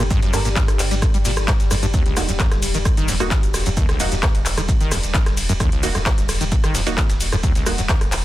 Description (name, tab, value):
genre	driving peak-time techno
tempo	131 BPM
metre	4/4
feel	straight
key	unclear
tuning	A4 = 441 Hz
part	acid bass, saw	riff	0.0-8.0 s	C#2 to G3	-25 LUFS	equal	analog chorus, sidechain pumping, tape echo
part	filtered dub chord stab	stabs	0.0-7.8 s	Bb3 to Bb4	-27 LUFS	right 2 dB	phaser, lush chorus, sidechain pumping, tape echo
part	warm sub bass	bass	0.0-8.2 s	Eb1 to G1	-25 LUFS	equal	overdrive, sidechain pumping, low-pass filter
part	swarming drone	drone	0.0-8.2 s	G2 to G3	-30 LUFS	left 1 dB	built-in reverb, sidechain pumping
part	techno drum kit	drums	0.0-8.2 s	handclaps, hi-hat, ride cymbal, rim click, shaker	-24 LUFS	equal	sidechain pumping on hats, sidechain pumping on cymbals, sidechain pumping on perc, soft clipping on snare
part	dusty soul sampler-style drum kit	drums	0.1-8.2 s	hi-hat, shaker, snare drum	-34 LUFS	right 2 dB	none
part	electronic kick drum	drums	0.1-8.0 s	none	-19 LUFS	equal	none
room	little or no reverb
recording	dense, heavily limited modern master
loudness	-16 LUFS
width	side -15 dB against mid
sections	0.0-8.2 A section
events	none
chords	0.0 Gm; 1.9 Ebm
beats	| 0.11 0.56 1.02 1.48 | 1.94 2.40 2.85 3.31 | 3.77 4.23 4.69 5.14 | 5.60 6.06 6.52 6.98 | 7.43 7.89